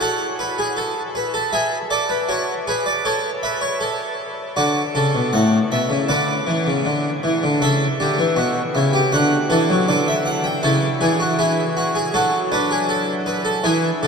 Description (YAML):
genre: classical, baroque-style 3-part fugue for harpsichord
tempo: 79 BPM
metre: 4/4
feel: straight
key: D major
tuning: A4 = 439 Hz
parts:
  - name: harpsichord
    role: solo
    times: 0.0-14.1 s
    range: A2 to G5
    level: -17 LUFS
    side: equal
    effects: none
room: wet huge ambient reverb, RT60 8.8 s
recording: in a vast, echoing space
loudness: -17 LUFS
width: side -5 dB against mid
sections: 0.0-4.6 A section; 4.6-14.1 B section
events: none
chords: 0.0 B5; 1.5 E7/G#; 3.1 A; 4.6 D; 6.1 E5; 7.6 A7/C#; 9.1 D; 10.6 A/C#; 12.1 Bm7/F#